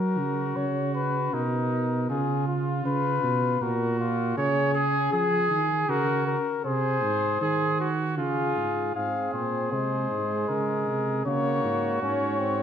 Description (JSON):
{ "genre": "classical, imitative canzona for brass ensemble", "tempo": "78 BPM", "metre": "3/4", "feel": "straight", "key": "F# major", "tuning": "A4 = 444 Hz", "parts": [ { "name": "dark trumpet", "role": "melody", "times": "0.0-12.6 s", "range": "E#4 to F5", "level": "-28 LUFS", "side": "left 8 dB", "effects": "none" }, { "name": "clear trumpet", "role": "second line", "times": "0.0-12.6 s", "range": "D#4 to C#5", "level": "-29 LUFS", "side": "right 4 dB", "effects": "none" }, { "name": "mellow tuba", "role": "bass", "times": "0.0-12.6 s", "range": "G#2 to F#3", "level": "-28 LUFS", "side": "right 3 dB", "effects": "none" }, { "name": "bright trombone", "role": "accompaniment", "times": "8.9-12.6 s", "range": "Ab3 to C#4", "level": "-31 LUFS", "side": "right 2 dB", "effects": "none" } ], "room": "wet recital hall reverb, RT60 1.5 s", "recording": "dark, warm production", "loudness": "-24 LUFS", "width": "side -8 dB against mid", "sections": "0.0-9.0 A section; 9.0-12.6 B section", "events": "none", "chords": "0.0 F#; 1.3 B; 2.1 C#; 3.6 F#/A#; 4.4 C#; 5.9 F#/C#; 6.6 G#; 8.2 C#; 9.0 Fm/Ab; 10.5 C#5; 11.3 F#" }